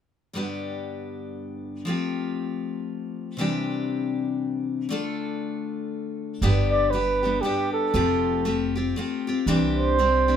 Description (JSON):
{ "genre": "folk", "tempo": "118 BPM", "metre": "3/4", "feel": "swing 60% on 8ths", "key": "unclear", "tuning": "A4 = 441 Hz", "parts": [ { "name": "picked steel-string acoustic guitar", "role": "accompaniment", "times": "0.3-10.4 s", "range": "G2 to A4", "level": "-26 LUFS", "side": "left 3 dB", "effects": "none" }, { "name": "upright bass", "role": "bass", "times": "6.4-10.4 s", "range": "F1 to C2", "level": "-26 LUFS", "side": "right 2 dB", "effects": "none" }, { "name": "warm flugelhorn", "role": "melody", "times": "6.7-10.4 s", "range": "G4 to D5", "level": "-22 LUFS", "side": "right 2 dB", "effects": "none" } ], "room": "moderate studio ambience, RT60 0.5 s", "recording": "minimal, uncompressed stereo recording", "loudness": "-23 LUFS", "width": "side -8 dB against mid", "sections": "0.3-6.4 A section; 6.4-10.4 B section", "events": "none", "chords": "0.3 G; 1.9 Fadd9; 3.4 Cadd9; 4.9 Dm; 6.4 G; 8.0 Fadd9; 9.5 Cadd9", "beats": "| 0.34 0.84 1.35 | 1.86 2.37 2.87 | 3.38 3.89 4.40 | 4.90 5.41 5.92 | 6.43 6.94 7.45 | 7.95 8.46 8.97 | 9.48 9.99" }